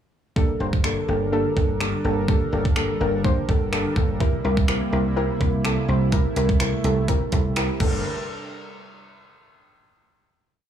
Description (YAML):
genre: dance-pop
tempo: 125 BPM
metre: 4/4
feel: straight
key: G dorian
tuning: A4 = 443 Hz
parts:
  - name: soft round pluck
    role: accompaniment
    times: 0.4-8.0 s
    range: Bb3 to C5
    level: -26 LUFS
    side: left 2 dB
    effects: chorus, sidechain pumping
  - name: chorused pulse-width pad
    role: sustained chords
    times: 0.4-8.0 s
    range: C3 to Bb4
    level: -29 LUFS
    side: right 2 dB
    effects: sidechain pumping
  - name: gated 80s digital drum machine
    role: drums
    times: 0.4-7.9 s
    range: crash cymbal, finger snaps, hi-hat, kick drum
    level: -23 LUFS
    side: right 1 dB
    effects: overdrive
  - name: dry thumbed slap bass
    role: bass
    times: 0.6-8.0 s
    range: G1 to C2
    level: -24 LUFS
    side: right 1 dB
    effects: sidechain pumping
room: light reverb, digital ambience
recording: small room reverb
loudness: -20 LUFS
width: side -9 dB against mid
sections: 0.4-8.0 verse; 8.0-10.0 final hit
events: none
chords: 0.4 Gmadd9; 4.2 C7; 7.8 Gmadd9; 8.0 N.C.